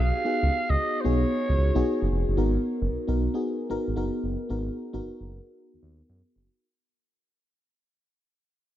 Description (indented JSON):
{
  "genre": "R&B, new jack swing",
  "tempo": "113 BPM",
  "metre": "4/4",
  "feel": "swing 66% on 16ths",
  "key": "G# dorian",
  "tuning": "A4 = 439 Hz",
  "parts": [
    { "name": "growling alto saxophone", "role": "melody", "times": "0.0-2.1 s", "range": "B#4 to E#5", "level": "-29 LUFS", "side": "right 2 dB", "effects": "ping-pong delay" },
    { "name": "mellow FM electric piano", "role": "accompaniment", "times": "0.0-6.6 s", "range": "B3 to A#4", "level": "-28 LUFS", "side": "left 2 dB", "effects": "chorus" },
    { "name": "smooth synth bass", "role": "bass", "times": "0.0-6.5 s", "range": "E#1 to F#2", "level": "-26 LUFS", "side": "equal", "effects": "none" }
  ],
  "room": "light reverb, studio ambience",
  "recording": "none",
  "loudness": "-24 LUFS",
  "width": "side -12 dB against mid",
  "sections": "0.0-2.4 A section; 2.4-6.6 B section",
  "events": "fade-out 2.4-6.6",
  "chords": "0.0 C#7sus4; 2.4 G#m7",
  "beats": "| 0.24 0.78 1.31 1.84 | 2.37 2.90 3.43 3.96 | 4.49 5.02 5.55 6.08"
}